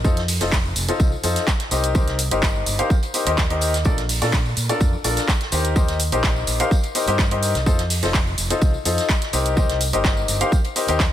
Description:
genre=piano house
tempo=126 BPM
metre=4/4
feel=straight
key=unclear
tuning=A4 = 440 Hz
part: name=clear grand piano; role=riff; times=0.0-11.0 s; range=D4 to F5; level=-23 LUFS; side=left 2 dB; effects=sidechain pumping, low-pass filter, ping-pong delay
part: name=overdriven fingered electric bass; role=bass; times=0.0-11.1 s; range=F1 to Bb2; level=-24 LUFS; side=equal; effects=sidechain pumping
part: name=electronic kick drum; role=drums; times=0.0-11.1 s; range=none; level=-19 LUFS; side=equal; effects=none
part: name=vintage drum kit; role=drums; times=0.0-11.1 s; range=hi-hat, snare drum, tambourine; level=-33 LUFS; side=right 1 dB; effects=high-pass filter on hats, high-pass filter on snare, high-pass filter on perc, high-pass filter on room
part: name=tambourine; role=percussion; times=0.0-11.1 s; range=none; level=-34 LUFS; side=left 2 dB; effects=none
part: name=house drum kit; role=drums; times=0.1-11.1 s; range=handclaps, hi-hat, shaker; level=-25 LUFS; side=right 1 dB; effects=overdrive
room=small room ambience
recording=none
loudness=-18 LUFS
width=side -11 dB against mid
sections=0.0-11.1 A section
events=none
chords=0.0 F7; 1.7 Cm7; 3.9 Bbmaj7; 5.5 Eb6; 7.7 F7; 9.3 Cm7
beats=| 0.04 0.52 1.00 1.47 | 1.95 2.43 2.90 3.38 | 3.85 4.33 4.81 5.28 | 5.76 6.24 6.71 7.19 | 7.66 8.14 8.62 9.09 | 9.57 10.04 10.52 11.00

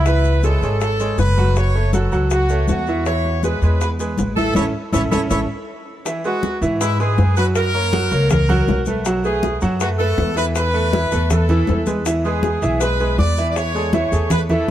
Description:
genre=latin, salsa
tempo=160 BPM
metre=4/4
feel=straight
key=unclear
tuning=A4 = 440 Hz
part: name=brilliant horn section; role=melody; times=0.0-14.7 s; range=E4 to D5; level=-22 LUFS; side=equal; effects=none
part: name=bright grand piano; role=accompaniment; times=0.0-14.7 s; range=E3 to F#5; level=-22 LUFS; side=right 2 dB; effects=none
part: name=upright bass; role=bass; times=0.0-14.7 s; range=F#1 to G#2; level=-19 LUFS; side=equal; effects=none
part: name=bongos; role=percussion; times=0.1-14.7 s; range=none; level=-29 LUFS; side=left 5 dB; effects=none
part: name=congas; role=percussion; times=0.1-14.7 s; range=none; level=-24 LUFS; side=left 1 dB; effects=none
part: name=maracas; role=percussion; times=0.1-14.7 s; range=none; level=-34 LUFS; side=left 5 dB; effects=none
room=light reverb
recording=heard from further back in the room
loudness=-16 LUFS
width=side -12 dB against mid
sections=0.0-6.1 A section; 6.1-14.7 B section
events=drum fill 4.6-6.1; band accent 4.6-6.1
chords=0.1 C#m; 1.6 F#m; 3.1 E; 4.6 A; 6.1 E; 7.6 F#; 9.1 B5; 10.6 Esus4; 12.1 E; 13.6 Amaj7/E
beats=| 0.06 0.43 0.81 1.18 | 1.56 1.93 2.31 2.68 | 3.06 3.43 3.81 4.18 | 4.56 4.93 5.31 5.68 | 6.06 6.43 6.81 7.18 | 7.56 7.93 8.31 8.68 | 9.06 9.43 9.81 10.18 | 10.56 10.93 11.31 11.68 | 12.06 12.43 12.81 13.18 | 13.56 13.93 14.31 14.68

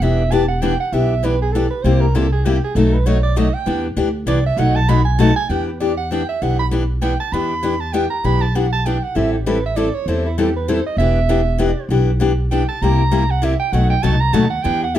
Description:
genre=acoustic string swing (jazz manouche)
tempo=197 BPM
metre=3/4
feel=swing 58% on 8ths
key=E minor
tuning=A4 = 440 Hz
part: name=clear soprano saxophone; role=second line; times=0.0-15.0 s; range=E4 to B5+23c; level=-22 LUFS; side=right 5 dB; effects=none
part: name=picked steel-string acoustic guitar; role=accompaniment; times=0.0-15.0 s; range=B2 to A4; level=-19 LUFS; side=left 4 dB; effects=none
part: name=upright bass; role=bass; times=0.0-15.0 s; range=E1 to E2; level=-18 LUFS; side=equal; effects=none
room=light reverb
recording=dark, warm production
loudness=-15 LUFS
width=side -11 dB against mid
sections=0.0-5.5 A section; 5.5-15.0 A section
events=soprano saxophone solo 0.0-15.0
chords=0.0 Em7; 1.8 C7; 2.8 B7; 3.7 Em7; 4.6 B7; 5.5 Em7; 9.2 Am7; 11.0 Em7; 12.8 C7; 13.7 B7b9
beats=| 0.02 0.33 0.63 | 0.94 1.24 1.54 | 1.85 2.15 2.46 | 2.76 3.07 3.37 | 3.67 3.98 4.28 | 4.59 4.89 5.20 | 5.50 5.80 6.11 | 6.42 6.72 7.02 | 7.33 7.63 7.94 | 8.24 8.55 8.85 | 9.16 9.46 9.77 | 10.07 10.38 10.68 | 10.99 11.29 11.60 | 11.90 12.21 12.51 | 12.82 13.12 13.43 | 13.73 14.04 14.34 | 14.65 14.95

